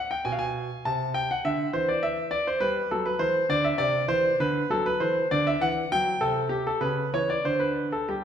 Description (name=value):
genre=classical, baroque-style suite movement for grand piano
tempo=100 BPM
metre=3/4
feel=rubato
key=unclear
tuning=A4 = 440 Hz
part: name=clear grand piano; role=solo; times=0.0-8.2 s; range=B2 to A5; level=-24 LUFS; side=equal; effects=none
room=wet recital hall reverb, RT60 1.4 s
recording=recorded in a church or concert hall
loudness=-23 LUFS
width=side -8 dB against mid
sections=0.0-8.2 A section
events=none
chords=0.0 N.C.; 0.8 C69; 2.6 D13; 3.8 Cadd9; 4.4 D; 5.6 Em; 6.2 N.C.; 6.8 C#m7; 7.4 N.C.